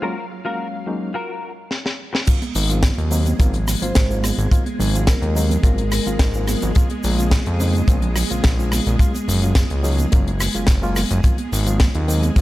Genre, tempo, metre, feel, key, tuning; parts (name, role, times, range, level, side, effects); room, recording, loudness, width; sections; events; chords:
nu-disco, nu disco; 107 BPM; 4/4; straight; Ab mixolydian; A4 = 440 Hz
reed electric piano; accompaniment; 0.0-12.4 s; Db3 to F5; -27 LUFS; left 1 dB; fast tremolo, sidechain pumping, analog delay
string machine, full ensemble; sustained chords; 0.0-12.4 s; Gb3 to F5; -29 LUFS; right 1 dB; ensemble chorus, sidechain pumping
direct-recorded clean electric guitar; riff; 0.0-2.2 s; F4 to Bb4; -29 LUFS; left 3 dB; ensemble chorus, low-pass filter, analog delay
tight funk drum kit; drums; 1.7-12.4 s; crash cymbal, hi-hat, rim click, shaker, snare drum; -25 LUFS; left 1 dB; low-pass filter on hats, studio reverb, low-pass filter on cymbals, low-pass filter on snare, low-pass filter on perc, low-pass filter on room
kick drum; drums; 2.3-12.4 s; -16 LUFS; equal; studio reverb
congas; percussion; 2.4-12.3 s; -29 LUFS; right 3 dB
fat analog bass; bass; 2.6-12.4 s; Gb1 to F2; -20 LUFS; equal; sidechain pumping
vibraphone with medium mallets; melody; 3.8-6.7 s; Bb4 to C5; -31 LUFS; left 2 dB; analog delay
studio reverb; -16 LUFS; side -16 dB against mid
0.0-2.3 A section; 2.3-12.4 B section
drum fill 1.7-2.3; drop 2.3-12.4
0.0 Gbmaj7; 2.3 Ab13; 6.8 Bbm7; 9.0 Gbmaj7; 11.2 Ab13